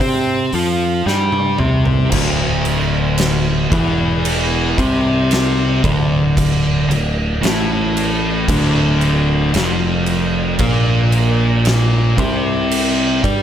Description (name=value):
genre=stoner and doom metal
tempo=57 BPM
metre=4/4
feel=straight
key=D minor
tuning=A4 = 440 Hz
part: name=thick fuzz guitar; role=riff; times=0.0-13.4 s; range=D2 to C5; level=-16 LUFS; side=equal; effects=distortion
part: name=sustaining fretless electric bass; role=bass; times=0.0-13.4 s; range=D1 to C3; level=-21 LUFS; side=equal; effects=tube saturation
part: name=oversized low-tuned drum kit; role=drums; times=0.0-13.4 s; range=crash cymbal, hi-hat, kick drum, snare drum, toms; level=-20 LUFS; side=right 1 dB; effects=none
room=light reverb, small room ambience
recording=none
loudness=-14 LUFS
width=side -10 dB against mid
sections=0.0-2.1 A section; 2.1-13.4 B section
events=drum fill 1.1-2.1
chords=0.0 C5; 2.1 Dm; 10.6 Bb5